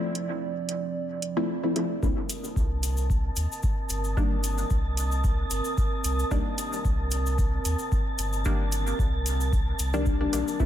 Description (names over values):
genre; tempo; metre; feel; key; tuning
dub techno; 112 BPM; 4/4; swing 54% on 16ths; C dorian; A4 = 440 Hz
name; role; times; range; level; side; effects
dark analog pad; sustained chords; 0.0-10.7 s; F3 to Eb6; -34 LUFS; right 4 dB; wide subtle chorus, sidechain pumping
filtered dub chord stab; stabs; 0.0-10.7 s; Eb3 to E4; -30 LUFS; left 2 dB; chorus, phaser, sidechain pumping, dub echo
electronic hi-hat; drums; 0.2-10.4 s; none; -33 LUFS; right 3 dB; overdrive
pure sine sub bass; bass; 2.0-10.7 s; G1 to Eb2; -28 LUFS; equal; sidechain pumping
electronic kick drum; drums; 2.0-10.7 s; none; -27 LUFS; equal; overdrive
cabasa; percussion; 2.0-10.7 s; none; -37 LUFS; left 4 dB; none
wind-like tuned noise texture; texture; 2.5-10.7 s; A5; -37 LUFS; left 2 dB; built-in reverb, sidechain pumping
room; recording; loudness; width
light reverb, digital ambience; none; -24 LUFS; side -11 dB against mid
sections
0.0-10.7 A section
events
break 0.0-2.0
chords
0.0 Dm7; 2.0 Cm7